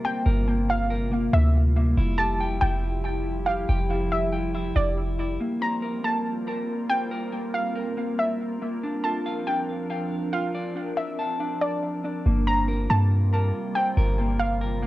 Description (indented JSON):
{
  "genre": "hip hop",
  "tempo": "140 BPM",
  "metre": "4/4",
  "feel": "half-time",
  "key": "G dorian",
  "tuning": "A4 = 440 Hz",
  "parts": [
    { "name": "warbly dusty pluck", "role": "melody", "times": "0.0-14.9 s", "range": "D5 to Bb5", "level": "-28 LUFS", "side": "equal", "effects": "chorus, cassette tape, tape echo" },
    { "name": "glassy FM pad", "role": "sustained chords", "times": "0.0-14.9 s", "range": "C3 to Bb4", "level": "-31 LUFS", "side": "right 1 dB", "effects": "ensemble chorus, built-in reverb, cassette tape" },
    { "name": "clean electric guitar", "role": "arpeggios", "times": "0.0-14.9 s", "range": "Bb3 to A5", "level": "-30 LUFS", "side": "left 1 dB", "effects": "cassette tape, tape echo" },
    { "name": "clean 808-style bass", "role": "bass", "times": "0.3-5.4, 12.3-14.9 s", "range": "F1 to G2", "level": "-23 LUFS", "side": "equal", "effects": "none" }
  ],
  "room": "light reverb",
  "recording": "home recording on cassette",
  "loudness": "-22 LUFS",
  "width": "side -16 dB against mid",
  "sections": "0.0-5.4 A section; 5.4-12.3 B section; 12.3-14.9 C section",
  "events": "none",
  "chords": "0.0 Gm7; 2.0 Fmaj9; 5.4 Gm7; 8.8 Dm7; 12.3 Gm7"
}